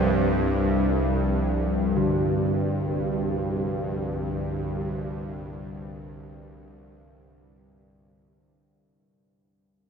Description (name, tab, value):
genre	dark ambient drone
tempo	free time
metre	none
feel	none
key	unclear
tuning	A4 = 439 Hz
part	bronze singing bowl	arpeggios	0.0-7.6 s	D3 to F3	-30 LUFS	right 1 dB	ping-pong delay
part	bowed-like drone	drone	0.0-9.1 s	C2 to G2	-25 LUFS	equal	built-in reverb
room	wet huge ambient reverb, RT60 7.7 s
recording	none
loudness	-23 LUFS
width	side -6 dB against mid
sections	0.0-9.0 A section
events	fade-out 0.0-9.0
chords	0.0 G5/C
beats	free time